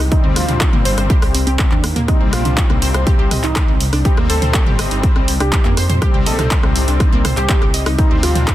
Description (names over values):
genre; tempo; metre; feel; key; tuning
melodic techno; 122 BPM; 4/4; straight; C dorian; A4 = 443 Hz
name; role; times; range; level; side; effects
wide unison pluck; arpeggios; 0.0-8.5 s; Bb3 to Eb5; -24 LUFS; right 1 dB; sidechain pumping, dub echo
dark detuned saw bass; bass; 0.0-8.5 s; G1 to F2; -18 LUFS; equal; sidechain pumping
wide unison lead; melody; 0.1-8.5 s; C4 to A4; -24 LUFS; right 1 dB; sidechain pumping, tape echo
brassy analog pad; stabs; 0.1-8.5 s; C3 to C4; -25 LUFS; left 4 dB; chorus, sidechain pumping, dub echo
electronic kick drum; drums; 0.1-8.5 s; none; -15 LUFS; equal; none
punchy analog drum machine; drums; 0.1-8.5 s; handclaps, hi-hat, rim click, toms; -21 LUFS; right 1 dB; overdrive, sidechain pumping on hats, sidechain pumping on toms
room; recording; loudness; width
digital ambience; dense, heavily limited modern master; -12 LUFS; side -14 dB against mid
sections
0.0-8.5 A section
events
none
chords
0.0 Cm